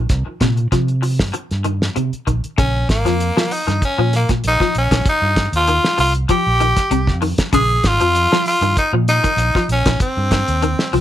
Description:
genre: afrobeat.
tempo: 97 BPM.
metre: 4/4.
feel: swing 53% on 16ths.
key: Bb dorian.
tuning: A4 = 440 Hz.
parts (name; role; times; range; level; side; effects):
clean electric guitar; arpeggios; 0.0-11.0 s; Bb2 to F3; -22 LUFS; left 3 dB; ensemble chorus, tape echo.
fingered electric bass; bass; 0.0-11.0 s; Ab1 to C3; -19 LUFS; right 1 dB; none.
cloth-damped thuddy drum kit; drums; 0.1-11.0 s; hi-hat, kick drum, snare drum; -19 LUFS; equal; none.
raspy tenor saxophone; melody; 2.6-11.0 s; Bb3 to Ab4; -17 LUFS; equal; none.
room: light reverb.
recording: none.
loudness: -14 LUFS.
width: side -12 dB against mid.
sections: 0.0-2.6 A section; 2.6-11.0 B section.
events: none.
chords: 0.1 Cm7; 2.6 Bbm; 5.0 Cm; 7.5 Bb5; 10.0 Cm.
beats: | 0.09 0.71 1.33 1.95 | 2.57 3.19 3.81 4.43 | 5.05 5.67 6.29 6.91 | 7.53 8.14 8.76 9.38 | 10.00 10.62.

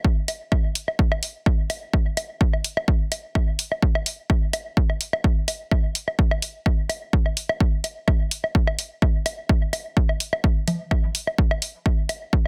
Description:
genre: techno.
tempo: 127 BPM.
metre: 4/4.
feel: swing 53% on 16ths.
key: none.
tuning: none.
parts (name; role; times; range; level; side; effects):
electronic kick drum; drums; 0.0-12.4 s; none; -22 LUFS; equal; overdrive.
electronic hi-hat; drums; 0.3-12.2 s; none; -29 LUFS; equal; overdrive.
woodblock and congas; percussion; 0.3-12.2 s; none; -30 LUFS; equal; overdrive, dub echo.
room: little or no reverb.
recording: dense, heavily limited modern master.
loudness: -23 LUFS.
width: mono.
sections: 0.0-12.5 A section.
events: none.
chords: none.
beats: | 0.05 0.52 0.99 1.46 | 1.94 2.41 2.88 3.35 | 3.83 4.30 4.77 5.24 | 5.71 6.19 6.66 7.13 | 7.61 8.08 8.55 9.02 | 9.49 9.97 10.44 10.91 | 11.38 11.86 12.33.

